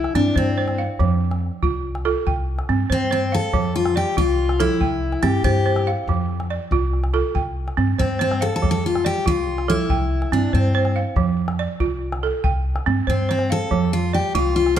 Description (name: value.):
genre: west african traditional, West African string and xylophone music.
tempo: 94 BPM (dotted quarters).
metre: 12/8.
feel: straight.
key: F major.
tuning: A4 = 440 Hz.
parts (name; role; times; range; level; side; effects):
picked steel-string acoustic guitar; melody; 0.0-14.8 s; C4 to C5; -22 LUFS; left 4 dB; none.
balafon; arpeggios; 0.0-14.8 s; F3 to G5; -23 LUFS; right 7 dB; none.
upright bass; bass; 0.0-14.8 s; C2 to G2; -23 LUFS; equal; none.
calabash; percussion; 0.0-14.8 s; none; -27 LUFS; left 2 dB; none.
room: moderate recital hall reverb, RT60 1.5 s.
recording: dark, warm production.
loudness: -18 LUFS.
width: side -10 dB against mid.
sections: 0.0-14.8 A section.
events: none.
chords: 0.0 C5; 1.0 F; 2.3 C5; 3.5 F; 4.8 C; 6.1 F; 7.4 C5; 8.6 F; 9.9 C; 11.2 F; 12.4 C5; 13.7 F.